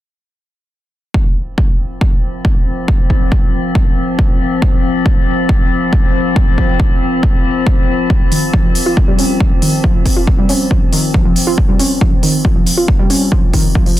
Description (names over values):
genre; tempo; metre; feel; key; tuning
driving peak-time techno; 138 BPM; 4/4; straight; unclear; A4 = 438 Hz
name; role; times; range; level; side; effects
metallic inharmonic drone; drone; 1.9-14.0 s; F3 to C4; -18 LUFS; left 2 dB; chorus, built-in reverb, sidechain pumping
electronic kick drum; drums; 1.1-13.8 s; none; -13 LUFS; equal; overdrive, small room ambience
warbly dusty pluck; riff; 8.1-13.9 s; Eb3 to F4; -16 LUFS; right 1 dB; chorus, overdrive, cassette tape, sidechain pumping, tape echo
electronic hi-hat; drums; 8.3-14.0 s; none; -19 LUFS; equal; overdrive, sidechain pumping on hats, small room ambience
room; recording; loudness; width
little or no reverb; dense, heavily limited modern master; -11 LUFS; side -14 dB against mid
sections
1.1-14.0 A section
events
none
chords
1.1 F5